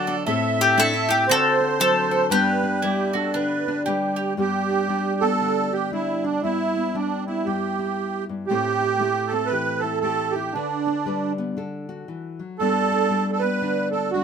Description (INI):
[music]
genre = acoustic folk duo or small band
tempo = 117 BPM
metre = 4/4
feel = swing 61% on 8ths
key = G major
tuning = A4 = 440 Hz
[part]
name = bowl-back mandolin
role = melody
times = 0.0-3.8 s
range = F#4 to A4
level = -20 LUFS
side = left 2 dB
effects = none
[part]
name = musette accordion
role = second line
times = 0.0-14.2 s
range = D4 to E5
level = -23 LUFS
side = right 6 dB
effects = none
[part]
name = nylon-string guitar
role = accompaniment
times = 0.0-14.2 s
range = G2 to B4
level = -26 LUFS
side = left 3 dB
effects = none
[part]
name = bowl-back mandolin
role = arpeggios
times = 0.0-4.4 s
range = D4 to A4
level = -29 LUFS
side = right 3 dB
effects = none
[sound]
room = light reverb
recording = minimal, uncompressed stereo recording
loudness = -20 LUFS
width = side -7 dB against mid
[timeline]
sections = 0.0-4.4 A section; 4.4-14.2 B section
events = accordion solo 4.4-14.2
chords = 0.3 Am; 1.3 D7; 2.3 G; 6.4 Em/G; 8.5 Am7; 10.5 G/D; 11.6 D; 12.6 G